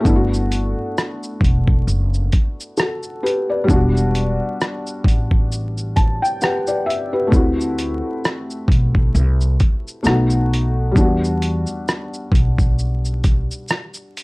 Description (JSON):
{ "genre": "lo-fi hip hop", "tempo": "66 BPM", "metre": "4/4", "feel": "swing 58% on 16ths", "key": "E minor", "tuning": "A4 = 439 Hz", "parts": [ { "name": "felt-muted upright piano", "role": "accompaniment", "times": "0.0-14.2 s", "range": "G3 to A5", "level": "-21 LUFS", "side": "left 1 dB", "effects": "cassette tape, low-pass filter" }, { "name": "upright bass", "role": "bass", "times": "0.1-13.5 s", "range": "E1 to E2", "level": "-19 LUFS", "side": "equal", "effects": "none" }, { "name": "dusty soul sampler-style drum kit", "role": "drums", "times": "0.1-14.2 s", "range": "hi-hat, kick drum, rim click, shaker", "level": "-18 LUFS", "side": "equal", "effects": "overdrive" } ], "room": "light reverb", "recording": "vinyl crackle", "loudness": "-16 LUFS", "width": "side -24 dB against mid", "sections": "0.0-14.2 A section", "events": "felt piano fill 5.5-7.3", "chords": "0.0 Em7; 7.3 D7; 10.0 B7; 11.0 Em7" }